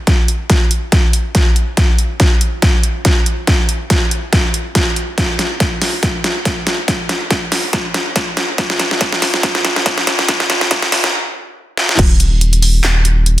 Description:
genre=future bass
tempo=141 BPM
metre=4/4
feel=swing 55% on 16ths, half-time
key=unclear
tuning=A4 = 439 Hz
part: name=dubstep drum kit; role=drums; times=0.1-13.4 s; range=crash cymbal, handclaps, hi-hat, snare drum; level=-15 LUFS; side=equal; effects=overdrive, high-pass filter on snare, high-pass filter on toms, high-pass filter on hats, high-pass filter on cymbals, high-pass filter on room
part: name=electronic kick drum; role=drums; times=0.1-12.1 s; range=none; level=-14 LUFS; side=equal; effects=overdrive
part: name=saturated sub bass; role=bass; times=12.0-13.4 s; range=Eb1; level=-12 LUFS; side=equal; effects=tube saturation, sidechain pumping
room=light reverb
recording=dense, heavily limited modern master, high-pass filter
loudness=-12 LUFS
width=side -14 dB against mid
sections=0.0-12.0 A section; 12.0-13.4 B section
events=build-up 0.0-12.0; drum fill 0.0-11.1, 11.8; filter sweep 0.0-12.0; stop 11.1-12.0; drop 12.0-13.4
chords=none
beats=| 0.07 0.50 0.92 1.35 | 1.77 2.20 2.63 3.05 | 3.48 3.90 4.33 4.75 | 5.18 5.61 6.03 6.46 | 6.88 7.31 7.73 8.16 | 8.58 9.01 9.44 9.86 | 10.29 10.71 11.14 11.56 | 11.99 12.41 12.84 13.26

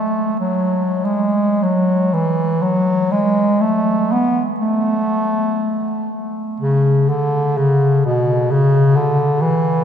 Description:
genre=classical, free, expressive piece for unaccompanied bass clarinet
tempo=41-66 BPM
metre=3/4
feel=rubato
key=A major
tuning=A4 = 436 Hz
part: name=clear bass clarinet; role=solo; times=0.0-9.8 s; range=B2 to B3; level=-14 LUFS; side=equal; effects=none
room=wet cathedral reverb, RT60 6.5 s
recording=heard from further back in the room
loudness=-14 LUFS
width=side -8 dB against mid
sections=0.0-1.7 A section; 1.7-9.8 B section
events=none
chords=none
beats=0.42 | 1.66 2.64 3.63 | 4.62 5.64 6.62 | 7.58 8.52 9.43

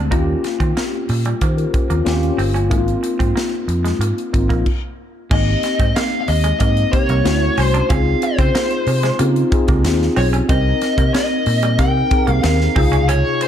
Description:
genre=polished 1980s jazz-funk pop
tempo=93 BPM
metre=4/4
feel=straight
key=Ab major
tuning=A4 = 438 Hz
part: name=tine electric piano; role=accompaniment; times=0.0-13.5 s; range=C3 to C5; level=-20 LUFS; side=left 2 dB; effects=medium stereo tremolo, ensemble chorus
part: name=semi-hollow electric guitar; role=riff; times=0.0-13.4 s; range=G3 to Eb4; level=-28 LUFS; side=right 6 dB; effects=lush chorus
part: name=fingered electric bass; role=bass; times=0.0-13.2 s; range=G1 to Eb3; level=-18 LUFS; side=equal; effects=none
part: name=crisp fusion drum kit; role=drums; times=0.1-13.5 s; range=crash cymbal, hi-hat, kick drum, snare drum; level=-20 LUFS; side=equal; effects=none
part: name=nasal lead guitar with a parked wah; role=melody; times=5.3-13.5 s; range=C5 to G5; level=-21 LUFS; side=left 2 dB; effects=overdrive
room=light reverb, studio ambience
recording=dark, warm production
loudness=-14 LUFS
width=side -9 dB against mid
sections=0.0-5.3 A section; 5.3-13.5 B section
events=stop 4.7-5.3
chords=0.1 Eb9; 2.1 Eb7; 2.7 Ab69; 5.3 Abmaj7; 7.3 Dmaj7; 7.9 Dbmaj7; 10.5 Cm7; 12.8 Dbmaj7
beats=| 0.12 0.77 1.42 2.07 | 2.72 3.37 4.01 4.66 | 5.31 5.96 6.61 7.25 | 7.90 8.55 9.20 9.84 | 10.49 11.14 11.79 12.44 | 13.09

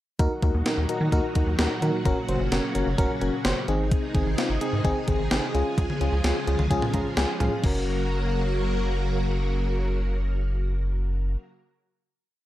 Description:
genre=synth-pop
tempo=129 BPM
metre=4/4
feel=straight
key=Gb lydian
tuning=A4 = 440 Hz
part: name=FM electric piano with auto-pan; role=accompaniment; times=0.2-11.4 s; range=C4 to Bb5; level=-29 LUFS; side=left 2 dB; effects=none
part: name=string machine, violins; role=sustained chords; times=0.2-11.4 s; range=Bb2 to Bb4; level=-30 LUFS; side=equal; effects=ensemble chorus
part: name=rubbery square bass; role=bass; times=0.2-11.4 s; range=Gb1 to Eb3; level=-26 LUFS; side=equal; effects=none
part: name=gated 80s digital drum machine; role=drums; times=0.2-7.7 s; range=crash cymbal, hi-hat, kick drum, snare drum, toms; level=-26 LUFS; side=equal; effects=gated reverb, gated reverb snare, overdrive
room=light reverb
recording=dark, warm production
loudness=-22 LUFS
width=side -14 dB against mid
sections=0.2-7.6 pre-chorus; 7.6-11.4 final chord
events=FM electric piano fill 6.7-7.6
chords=0.2 Ebm; 2.1 Gb; 3.7 Ab; 5.5 Db; 7.6 Gb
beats=| 0.19 0.66 1.12 1.59 | 2.06 2.52 2.98 3.45 | 3.92 4.38 4.84 5.31 | 5.78 6.24 6.71 7.17 | 7.64 8.10 8.57 9.03 | 9.50 9.96 10.43 10.89

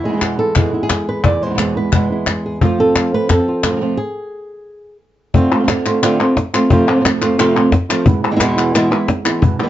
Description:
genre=flamenco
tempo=176 BPM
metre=4/4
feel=straight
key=E phrygian dominant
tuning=A4 = 441 Hz
part: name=flamenco guitar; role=melody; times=0.0-9.7 s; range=E2 to D5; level=-16 LUFS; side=right 1 dB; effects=none
part: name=flamenco guitar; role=stabs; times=0.1-9.7 s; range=E2 to F4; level=-20 LUFS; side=right 4 dB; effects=none
part: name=cajon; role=percussion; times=0.2-9.6 s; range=none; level=-16 LUFS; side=left 2 dB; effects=none
part: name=palmas hand claps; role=percussion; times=0.2-9.7 s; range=none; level=-20 LUFS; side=left 4 dB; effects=none
room=moderate studio reverb, RT60 0.5 s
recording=dark, warm production, nothing above 7.7 kHz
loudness=-13 LUFS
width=side -12 dB against mid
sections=0.0-5.3 A section; 5.3-9.7 B section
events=stop 4.0-5.3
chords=0.0 E; 2.6 F; 4.0 N.C.; 5.3 Dm7; 6.7 F; 8.1 E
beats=0.21 0.56 0.90 | 1.24 1.58 1.93 2.27 | 2.61 2.95 3.30 3.64 | 3.98 4.32 4.67 5.01 | 5.35 5.69 6.03 6.37 | 6.71 7.05 7.39 7.73 | 8.07 8.41 8.75 9.09 | 9.43

